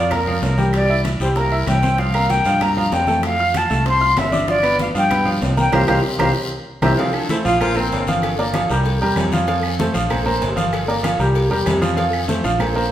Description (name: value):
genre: latin, salsa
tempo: 192 BPM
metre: 4/4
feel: straight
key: F major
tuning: A4 = 440 Hz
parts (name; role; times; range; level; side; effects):
- silver concert flute; melody; 0.0-6.9 s; Bb4 to C6; -19 LUFS; left 1 dB; none
- bright upright piano; accompaniment; 0.0-12.9 s; F3 to F6; -20 LUFS; right 1 dB; none
- fingered electric bass; bass; 0.0-12.9 s; G1 to G2; -21 LUFS; equal; none
- bongos and cowbell; percussion; 0.1-12.8 s; none; -30 LUFS; left 3 dB; none
- claves; percussion; 0.1-12.8 s; none; -35 LUFS; right 1 dB; none
- congas; percussion; 0.1-12.9 s; none; -28 LUFS; left 3 dB; none
- guiro; percussion; 0.1-12.9 s; none; -32 LUFS; left 3 dB; none
- timbales and agogo bells; percussion; 0.1-12.8 s; none; -30 LUFS; right 2 dB; none
- clear baritone saxophone; second line; 7.0-8.4 s; C4 to F4; -23 LUFS; equal; none
room: wet large studio reverb, RT60 1.2 s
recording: band playing live in one room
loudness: -15 LUFS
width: side -12 dB against mid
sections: 0.0-7.0 A section; 7.0-12.9 B section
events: band accent 5.7-7.0; drum fill 6.0-7.0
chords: 0.0 Bb5; 0.7 C9; 2.0 C7sus4; 3.2 Fmaj7; 4.5 G7; 5.7 C7sus4; 7.0 F; 7.6 Bbsus2; 8.2 Gm7; 8.9 C7; 9.5 F; 10.1 Bbsus2; 10.7 Gm7; 11.4 C7; 12.0 F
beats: 0.11 0.42 | 0.73 1.05 1.36 1.67 | 1.98 2.30 2.61 2.92 | 3.23 3.55 3.86 4.17 | 4.48 4.80 5.11 5.42 | 5.73 6.05 6.36 6.67 | 6.98 7.30 7.61 7.92 | 8.23 8.54 8.86 9.17 | 9.48 9.79 10.10 10.41 | 10.73 11.04 11.35 11.66 | 11.97 12.29 12.60 12.91